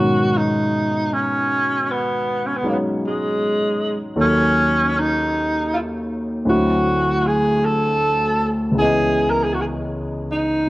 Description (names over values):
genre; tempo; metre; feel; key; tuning
jazz; 52 BPM; 4/4; swing 67% on 8ths; G# minor; A4 = 440 Hz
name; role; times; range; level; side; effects
breathy tenor saxophone; melody; 0.0-10.7 s; G#3 to A#4; -19 LUFS; right 1 dB; cassette tape
warm grand piano; accompaniment; 0.0-10.7 s; C#2 to E5; -21 LUFS; equal; cassette tape
room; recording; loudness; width
moderate spring reverb, RT60 2.3 s; home recording on cassette; -17 LUFS; side -18 dB against mid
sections
0.0-10.7 A section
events
none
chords
0.0 G#m11; 4.2 D#m7b5; 6.5 D9; 8.8 C#m9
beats
0.71 1.87 3.02 | 4.17 5.32 6.46 7.61 | 8.75 9.90